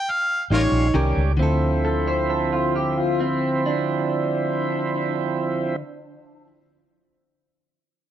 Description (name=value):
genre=blues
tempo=66 BPM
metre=4/4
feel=straight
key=D minor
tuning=A4 = 441 Hz
part: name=warm harmonica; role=melody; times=0.0-0.9 s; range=F4 to G5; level=-24 LUFS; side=equal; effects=overdrive, plate reverb
part: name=electric guitar through a small old amp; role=second line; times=0.5-6.5 s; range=C4 to C5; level=-26 LUFS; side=equal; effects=wide subtle chorus, plate reverb
part: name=overdriven tonewheel organ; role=accompaniment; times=0.5-5.8 s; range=F3 to G4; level=-24 LUFS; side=right 4 dB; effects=slow rotary speaker, plate reverb
part: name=vintage muted fingered electric bass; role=bass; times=0.5-5.8 s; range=A1 to D2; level=-23 LUFS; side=equal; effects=none
part: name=direct-recorded clean electric guitar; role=stabs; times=0.9-5.9 s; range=D3 to Bb4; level=-28 LUFS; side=left 3 dB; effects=analog delay
room=moderate studio reverb, RT60 0.7 s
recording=none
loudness=-20 LUFS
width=side -10 dB against mid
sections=0.0-1.4 A section; 1.4-5.0 B section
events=slowing down 0.0-1.4; stop 0.0-0.5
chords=0.0 N.C.; 0.5 Eb7; 1.4 Dm7